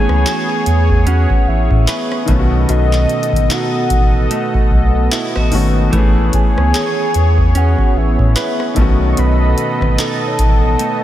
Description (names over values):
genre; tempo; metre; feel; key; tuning
contemporary R&B; 74 BPM; 4/4; swing 58% on 16ths; A lydian; A4 = 440 Hz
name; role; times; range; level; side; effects
soft octave-layered synth lead; melody; 0.0-11.0 s; D#5 to C#6; -21 LUFS; left 1 dB; chorus, phaser, analog delay
clear grand piano; accompaniment; 0.0-11.0 s; D#3 to G#4; -22 LUFS; left 3 dB; none
warm analog pad; sustained chords; 0.0-11.0 s; B3 to D#5; -21 LUFS; right 1 dB; chorus, sidechain pumping
direct-recorded clean electric guitar; arpeggios; 0.0-11.0 s; B2 to B4; -22 LUFS; right 5 dB; lush chorus
synth chime; texture; 0.0-4.8, 10.0-11.0 s; F#4 to B5; -32 LUFS; equal; none
saturated sub bass; bass; 0.1-10.8 s; G#1 to A2; -14 LUFS; equal; none
booming analog drum machine; drums; 0.1-11.0 s; handclaps, hi-hat, kick drum, rim click; -16 LUFS; equal; overdrive
room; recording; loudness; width
light reverb; none; -12 LUFS; side -12 dB against mid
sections
0.0-11.0 A section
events
none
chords
0.0 Amaj9; 2.3 B7; 5.9 Amaj9; 8.8 B7